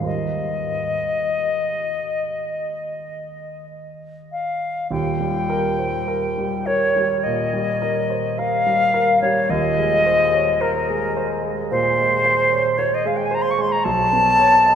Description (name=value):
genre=classical, impressionist duo for flute and grand piano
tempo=48-56 BPM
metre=4/4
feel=rubato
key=Eb mixolydian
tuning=A4 = 441 Hz
part: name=warm concert grand piano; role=accompaniment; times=0.0-14.8 s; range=Eb1 to D#5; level=-24 LUFS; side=right 2 dB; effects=none
part: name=silver concert flute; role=melody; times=0.1-14.8 s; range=Bb4 to Db6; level=-19 LUFS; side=left 2 dB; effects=none
room=wet cathedral reverb, RT60 5.7 s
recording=recorded in a church or concert hall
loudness=-18 LUFS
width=side -8 dB against mid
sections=0.0-4.9 A section; 4.9-14.8 B section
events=none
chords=0.1 Eb69; 4.9 Eb; 9.5 Abadd9/Eb; 13.9 B7sus2